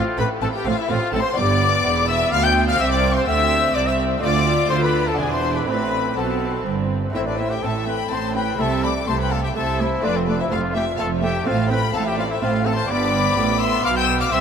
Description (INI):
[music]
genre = classical, baroque-style concerto movement with solo episodes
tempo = 126 BPM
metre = 3/4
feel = straight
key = A minor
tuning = A4 = 440 Hz
[part]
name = rich symphonic violin section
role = melody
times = 0.0-14.4 s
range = C5 to G6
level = -26 LUFS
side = left 8 dB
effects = none
[part]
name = warm trumpet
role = melody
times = 0.0-14.4 s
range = C4 to G5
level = -24 LUFS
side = left 2 dB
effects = none
[part]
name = rich chamber violin section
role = second line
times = 0.0-14.4 s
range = E4 to E6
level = -26 LUFS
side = left 3 dB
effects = none
[part]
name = lute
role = accompaniment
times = 0.0-14.4 s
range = D2 to G4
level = -30 LUFS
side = left 1 dB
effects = none
[part]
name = rich chamber cello section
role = bass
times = 0.0-14.4 s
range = C2 to D3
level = -25 LUFS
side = right 5 dB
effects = none
[part]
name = rich symphonic double bass section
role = bass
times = 0.0-14.4 s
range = E1 to D2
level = -26 LUFS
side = right 4 dB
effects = none
[part]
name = rich studio viola section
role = accompaniment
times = 0.2-14.4 s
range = A3 to F4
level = -27 LUFS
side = right 1 dB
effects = none
[sound]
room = wet huge ambient reverb, RT60 8.0 s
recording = in a vast, echoing space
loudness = -18 LUFS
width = side -7 dB against mid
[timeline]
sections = 0.0-7.2 A section; 7.2-14.4 A section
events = none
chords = 0.0 F/A; 1.4 G; 2.8 C; 4.2 Dm; 5.2 E5; 5.7 Am; 8.6 Am/C; 10.0 F; 11.5 F/A; 12.9 G